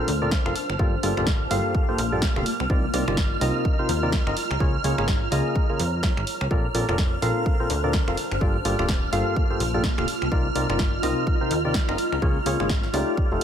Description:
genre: piano house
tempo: 126 BPM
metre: 4/4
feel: swing 59% on 16ths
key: unclear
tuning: A4 = 437 Hz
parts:
  - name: analog string pad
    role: sustained chords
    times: 0.0-13.4 s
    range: F6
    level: -32 LUFS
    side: right 4 dB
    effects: ensemble chorus, sidechain pumping
  - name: percussive organ stab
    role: riff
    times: 0.0-13.4 s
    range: G2 to F5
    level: -26 LUFS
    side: left 1 dB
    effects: chorus, sidechain pumping, ping-pong delay
  - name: granular cloud pad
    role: texture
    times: 0.0-13.4 s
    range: Bb3 to Bb5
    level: -31 LUFS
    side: equal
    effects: built-in reverb, analog chorus, sidechain pumping
  - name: plucky analog bass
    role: bass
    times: 0.1-13.4 s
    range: D1 to F2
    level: -28 LUFS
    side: equal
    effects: sidechain pumping
  - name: punchy analog drum machine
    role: drums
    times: 0.1-13.4 s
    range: finger snaps, hi-hat, snare drum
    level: -30 LUFS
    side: equal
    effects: none
  - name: electronic kick drum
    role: drums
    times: 0.3-13.3 s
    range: none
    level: -24 LUFS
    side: equal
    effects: none
room: light reverb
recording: none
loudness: -21 LUFS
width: side -9 dB against mid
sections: 0.0-13.4 A section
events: none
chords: 0.0 Bbmaj9; 0.6 Gm9; 2.5 Cm11; 4.4 Db6; 6.5 Bbmaj9; 8.2 Gm9; 10.1 Cm11; 12.0 Db6

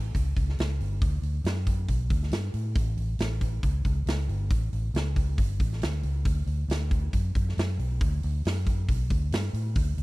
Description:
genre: blues rock power trio and southern rock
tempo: 137 BPM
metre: 4/4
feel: straight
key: unclear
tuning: A4 = 440 Hz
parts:
  - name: vintage muted fingered electric bass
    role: bass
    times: 0.0-10.0 s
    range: G1 to A2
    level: -27 LUFS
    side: equal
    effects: none
  - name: big rock drum kit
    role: drums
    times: 0.1-10.0 s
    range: hi-hat, kick drum, snare drum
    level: -28 LUFS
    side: equal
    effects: none
room: little or no reverb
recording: dry, close 1970s-style studio recording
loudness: -25 LUFS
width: side -21 dB against mid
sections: 0.0-10.0 A section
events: none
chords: none

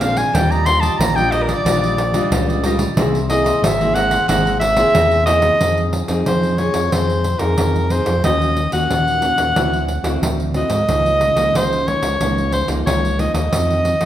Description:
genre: samba and choro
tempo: 91 BPM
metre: 4/4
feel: straight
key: F minor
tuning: A4 = 440 Hz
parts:
  - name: clear soprano saxophone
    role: melody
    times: 0.0-14.1 s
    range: Bb4 to C6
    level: -18 LUFS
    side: equal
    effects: none
  - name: cavaquinho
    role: accompaniment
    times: 0.0-5.6 s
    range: D4 to Bb5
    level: -28 LUFS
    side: right 4 dB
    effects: none
  - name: nylon-string guitar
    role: accompaniment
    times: 0.0-14.1 s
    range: F2 to G#4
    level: -23 LUFS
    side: left 2 dB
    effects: none
  - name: fat analog bass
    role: bass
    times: 0.0-14.1 s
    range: G#1 to Ab2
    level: -20 LUFS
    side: equal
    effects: none
  - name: pandeiro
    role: percussion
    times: 0.0-14.1 s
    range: none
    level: -22 LUFS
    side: right 1 dB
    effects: none
room: wet large studio reverb, RT60 1.3 s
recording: band playing live in one room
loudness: -14 LUFS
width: side -11 dB against mid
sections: 0.0-5.6 A section; 5.6-14.1 B section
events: soprano saxophone solo 0.0-5.6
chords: 0.3 Ebmaj9; 3.0 Caug7; 5.6 Fm7; 8.2 Ebm7; 9.6 D9; 10.9 Db69; 13.5 F7

